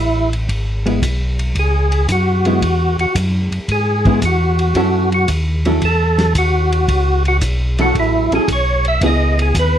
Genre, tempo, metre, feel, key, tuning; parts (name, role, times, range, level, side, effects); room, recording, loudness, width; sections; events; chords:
soul jazz organ trio; 113 BPM; 4/4; swing 69% on 8ths; C# minor; A4 = 440 Hz
overdriven tonewheel organ; melody; 0.0-9.8 s; E4 to E5; -17 LUFS; equal; chorus vibrato, stopped rotary speaker
mellow tonewheel organ; bass; 0.0-9.8 s; G#1 to G#2; -16 LUFS; equal; chorus vibrato, slow rotary speaker
warm soul drum kit; drums; 0.3-9.7 s; hi-hat, kick drum, ride cymbal, snare drum; -23 LUFS; equal
hollow-body jazz guitar; accompaniment; 0.9-9.8 s; F#3 to A4; -18 LUFS; equal
light reverb; lossy compression artefacts; -13 LUFS; side -10 dB against mid
0.0-9.8 A section
tonewheel organ solo 0.0-9.8
0.0 C#m7; 4.8 F#m7; 9.0 C#m7